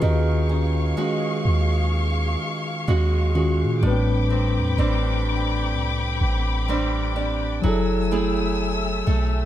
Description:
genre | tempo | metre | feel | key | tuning
contemporary R&B | 63 BPM | 4/4 | swing 58% on 16ths | unclear | A4 = 440 Hz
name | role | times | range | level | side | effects
mellow tine electric piano | accompaniment | 0.0-9.5 s | A2 to B4 | -25 LUFS | left 2 dB | medium stereo tremolo
dark studio string section | sustained chords | 0.0-9.5 s | A3 to E6 | -29 LUFS | left 3 dB | none
nylon-string guitar | arpeggios | 0.0-9.5 s | A2 to G#4 | -28 LUFS | right 4 dB | ping-pong delay
clean 808-style bass | bass | 0.0-9.5 s | F#1 to A#2 | -23 LUFS | equal | none
room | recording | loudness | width
small room ambience | none | -20 LUFS | side -12 dB against mid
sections
0.0-7.6 A section; 7.6-9.5 B section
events
none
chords
0.0 D#m11; 3.8 Am11; 7.6 F#m9

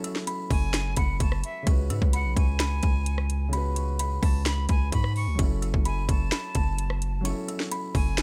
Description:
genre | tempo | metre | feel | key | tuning
hip hop, trap | 129 BPM | 4/4 | half-time | F# minor | A4 = 440 Hz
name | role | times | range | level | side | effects
buzzing kalimba | melody | 0.0-8.2 s | G#5 to E6 | -38 LUFS | equal | none
warm concert grand piano | accompaniment | 0.0-8.2 s | C#3 to B4 | -39 LUFS | equal | none
trap drum kit | drums | 0.0-8.2 s | finger snaps, hi-hat, kick drum, rim click, snare drum | -28 LUFS | equal | none
jazz flute | second line | 0.5-8.2 s | E5 to C#6 | -39 LUFS | equal | tape echo
distorted 808-style bass | bass | 0.5-8.2 s | F#1 to G#2 | -29 LUFS | equal | distortion
room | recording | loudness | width
studio reverb | none | -26 LUFS | mono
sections
0.0-8.2 A section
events
none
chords
0.0 F#m7; 1.7 C#7sus4; 5.4 F#m7

